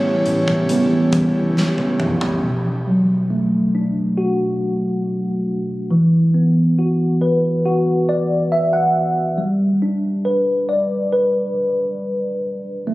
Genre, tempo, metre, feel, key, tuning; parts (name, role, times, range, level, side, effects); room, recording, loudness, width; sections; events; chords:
pop ballad; 69 BPM; 4/4; straight; B minor; A4 = 441 Hz
tine electric piano; accompaniment; 0.0-12.9 s; B2 to F#5; -16 LUFS; equal; analog chorus
airy breathy pad; sustained chords; 0.0-2.4 s; E3 to G4; -23 LUFS; equal; chorus
vintage muted fingered electric bass; bass; 0.0-2.4 s; F#1 to E2; -28 LUFS; equal
huge arena drum kit; drums; 0.3-2.4 s; hi-hat, kick drum, snare drum, toms; -26 LUFS; equal
light reverb, small room ambience; recorded on a phone in the room, club reverb; -16 LUFS; side -18 dB against mid
0.0-2.4 A section; 2.4-12.9 B section
tine electric piano solo 0.0-2.4; drum fill 1.6-2.4; tine electric piano fill 7.7-9.4
0.0 A7; 2.4 Bm7; 5.9 Esus2; 9.4 G